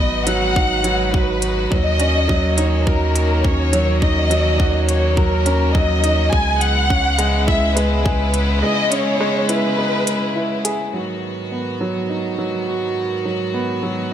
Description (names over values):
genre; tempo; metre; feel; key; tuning
piano and strings electronica; 104 BPM; 4/4; straight; G# minor; A4 = 441 Hz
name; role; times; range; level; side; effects
dark symphonic violin section; melody; 0.0-10.6 s; A#4 to G#5; -20 LUFS; left 2 dB; ping-pong delay
bright chamber string section; sustained chords; 0.0-14.1 s; G#2 to B4; -26 LUFS; equal; sidechain pumping
warm upright piano; riff; 0.0-14.1 s; F#3 to G#4; -21 LUFS; right 2 dB; ping-pong delay
warm sub bass; bass; 0.0-8.6 s; G#1 to D#2; -20 LUFS; equal; sidechain pumping
electronic hi-hat; drums; 0.3-10.8 s; none; -23 LUFS; equal; studio ambience
electronic kick drum; drums; 0.6-8.2 s; none; -19 LUFS; equal; studio ambience
room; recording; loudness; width
moderate concert hall reverb, RT60 2.0 s; none; -16 LUFS; side -10 dB against mid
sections
0.0-10.9 A section; 10.9-14.1 B section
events
break 8.6-10.9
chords
0.0 G#m7; 1.7 D#m7; 6.3 C#m7; 10.9 G#m7